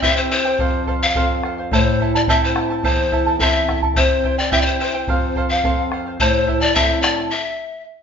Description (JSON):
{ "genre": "andean folk, Andean ensemble", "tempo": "107 BPM", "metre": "2/4", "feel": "straight", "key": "A minor", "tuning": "A4 = 441 Hz", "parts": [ { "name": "breathy pan flute", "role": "melody", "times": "0.0-7.8 s", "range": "C5 to F5", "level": "-19 LUFS", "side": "left 3 dB", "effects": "none" }, { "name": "charango", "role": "accompaniment", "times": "0.0-7.3 s", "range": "E4 to A5", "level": "-22 LUFS", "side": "right 4 dB", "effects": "none" }, { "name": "flamenco guitar", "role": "accompaniment", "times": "0.0-7.3 s", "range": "E2 to A4", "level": "-23 LUFS", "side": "left 1 dB", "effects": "none" }, { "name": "bombo", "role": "percussion", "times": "0.0-7.2 s", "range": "none", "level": "-22 LUFS", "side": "equal", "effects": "none" } ], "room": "wet large studio reverb, RT60 0.8 s", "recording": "band playing live in one room, nothing above 7.5 kHz", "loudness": "-16 LUFS", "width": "side -7 dB against mid", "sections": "0.0-8.0 A section", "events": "stop 7.3-8.0", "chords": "0.0 C; 0.6 F; 1.7 Am; 4.0 C; 5.1 F; 6.2 Am" }